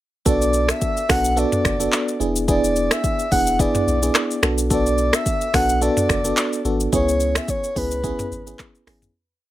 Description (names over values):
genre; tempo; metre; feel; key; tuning
afrobeats; 108 BPM; 4/4; swing 55% on 16ths; B dorian; A4 = 439 Hz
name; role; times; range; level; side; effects
breathy flute-like synth lead; melody; 0.3-8.6 s; B4 to F#5; -22 LUFS; equal; chorus, ping-pong delay
FM electric piano with auto-pan; accompaniment; 0.3-9.1 s; B3 to A4; -22 LUFS; right 1 dB; none
punchy sub bass; bass; 0.3-9.1 s; E1 to C#2; -24 LUFS; equal; none
afro-pop drum kit; drums; 0.3-9.1 s; finger snaps, handclaps, hi-hat, kick drum, rim click, shaker, toms; -22 LUFS; equal; none
room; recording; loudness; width
light reverb; none; -17 LUFS; side -14 dB against mid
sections
0.3-9.2 chorus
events
fade-out 6.9-9.2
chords
0.3 Bm7; 2.2 E7; 4.4 Bm7; 6.9 C#m7